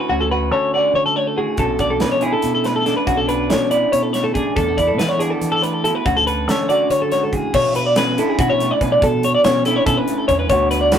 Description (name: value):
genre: math rock and midwest emo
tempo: 282 BPM (eighths)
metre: 7/8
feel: straight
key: unclear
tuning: A4 = 439 Hz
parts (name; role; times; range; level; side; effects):
- electric guitar through a small old amp; accompaniment; 0.0-11.0 s; D2 to A4; -22 LUFS; right 2 dB; none
- twelve-string electric guitar; arpeggios; 0.0-11.0 s; F#4 to D5; -17 LUFS; left 1 dB; warbly pitch drift
- fingered electric bass; bass; 0.1-11.0 s; B1 to E3; -24 LUFS; equal; none
- modern studio drum kit; drums; 1.6-11.0 s; crash cymbal, hi-hat, kick drum, snare drum; -24 LUFS; right 1 dB; none
room: moderate small room ambience, RT60 0.5 s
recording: rough rehearsal-room recording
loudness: -15 LUFS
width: side -8 dB against mid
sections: 0.0-7.5 A section; 7.5-11.0 B section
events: none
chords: 0.0 Dmaj7; 1.6 Bm9; 4.6 E7sus4; 6.1 Dmaj7; 7.5 Bm9